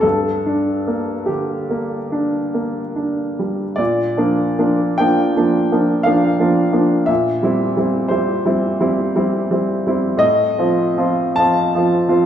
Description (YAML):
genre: classical, romantic nocturne for solo piano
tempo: 46-60 BPM (dotted quarters)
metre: 9/8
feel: rubato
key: G minor, Bb major from 3.8 s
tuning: A4 = 440 Hz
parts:
  - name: clear upright piano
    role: solo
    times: 0.0-12.3 s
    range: G2 to A5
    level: -15 LUFS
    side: equal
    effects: none
room: wet recital hall reverb, RT60 1.5 s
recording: minimal, uncompressed stereo recording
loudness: -15 LUFS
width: side -9 dB against mid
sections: 0.0-3.8 A section; 3.8-12.3 B section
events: none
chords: 0.0 Gm; 3.8 Bb; 7.1 C7/Bb; 10.2 F7/A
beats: | 0.03 1.29 2.54 | 3.79 4.99 6.06 | 7.09 8.11 9.14 | 10.20 11.37